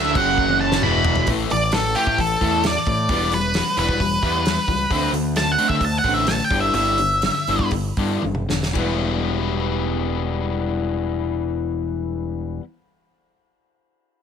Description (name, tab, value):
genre	quiet-loud alternative rock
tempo	113-134 BPM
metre	4/4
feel	straight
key	E minor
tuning	A4 = 441 Hz
part	octave-fuzz lead guitar	melody	0.0-7.7 s	G4 to B5	-20 LUFS	right 1 dB	distortion, plate reverb
part	bright tonewheel organ	sustained chords	0.0-1.3 s	E3 to G5	-33 LUFS	right 2 dB	none
part	crunchy overdriven guitar	riff	0.0-12.6 s	E2 to E4	-25 LUFS	left 11 dB	none
part	crunchy overdriven guitar	riff	0.0-1.3 s	E2 to D4	-25 LUFS	right 18 dB	none
part	sludgy distorted guitar	riff	0.0-1.3 s	E2 to D4	-27 LUFS	right 2 dB	none
part	growling picked electric bass	bass	0.0-12.6 s	E1 to D3	-26 LUFS	right 1 dB	overdrive
part	loose indie drum kit	drums	0.2-8.9 s	crash cymbal, hi-hat, kick drum, ride cymbal, snare drum, toms	-26 LUFS	right 1 dB	none
part	electric guitar through a small old amp	arpeggios	1.3-12.7 s	A2 to B4	-29 LUFS	right 4 dB	lush chorus, plate reverb
room	light reverb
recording	none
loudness	-18 LUFS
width	side -8 dB against mid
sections	0.0-1.3 A section; 1.3-8.8 B section; 8.8-13.0 C section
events	lead electric guitar solo 0.0-1.3, 1.3-8.8; drum fill 0.4-1.3, 8.2-8.8; slowing down 4.9-8.8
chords	0.2 F#5; 0.8 Em; 1.3 A5; 3.1 Em; 4.9 D5; 6.5 G6; 8.8 Em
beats	0.38 0.83 | 1.28 1.73 2.19 2.64 | 3.09 3.54 4.00 4.45 | 4.90 5.36 5.81 6.28 | 6.75 7.23 7.72 8.23 | 8.76 9.29 9.82 10.36 | 10.89 11.42 11.95 12.48